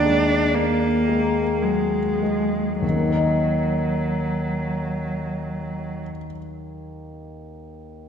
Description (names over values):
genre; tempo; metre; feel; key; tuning
classical, slow romantic movement for piano quartet; 48-61 BPM; 3/4; rubato; Eb minor; A4 = 442 Hz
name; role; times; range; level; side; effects
rich cello; second line; 0.0-6.0 s; Gb3 to D4; -23 LUFS; right 3 dB; none
warm concert grand piano; accompaniment; 0.0-8.1 s; Eb2 to Eb5; -23 LUFS; left 3 dB; none
room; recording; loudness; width
wet concert hall reverb, RT60 2.2 s; none; -20 LUFS; side -8 dB against mid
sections
0.0-2.8 A section; 2.8-6.3 B section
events
slowing down 0.0-2.8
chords
0.0 Bb7(no3)/Eb; 2.8 Ebm